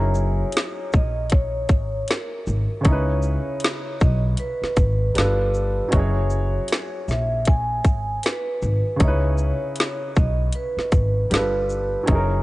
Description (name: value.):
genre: lo-fi hip hop.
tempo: 78 BPM.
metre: 4/4.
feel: swing 58% on 16ths.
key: unclear.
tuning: A4 = 440 Hz.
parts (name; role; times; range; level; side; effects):
vibraphone with soft mallets; melody; 0.0-12.4 s; A#4 to G#5; -27 LUFS; equal; none.
warm upright piano; accompaniment; 0.0-12.4 s; C#3 to C#5; -28 LUFS; right 1 dB; cassette tape.
upright bass; bass; 0.0-12.4 s; F#1 to C#2; -22 LUFS; equal; none.
garage drum kit; drums; 0.1-12.3 s; hi-hat, kick drum, shaker, snare drum; -20 LUFS; equal; none.
room: light reverb, studio reverb.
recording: cassette tape, nothing above 10.4 kHz.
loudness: -19 LUFS.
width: side -19 dB against mid.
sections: 0.0-12.4 A section.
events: none.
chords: 0.0 F#13; 2.9 C#m9; 5.2 G9; 5.9 F#9; 9.0 C#m9; 11.3 G9.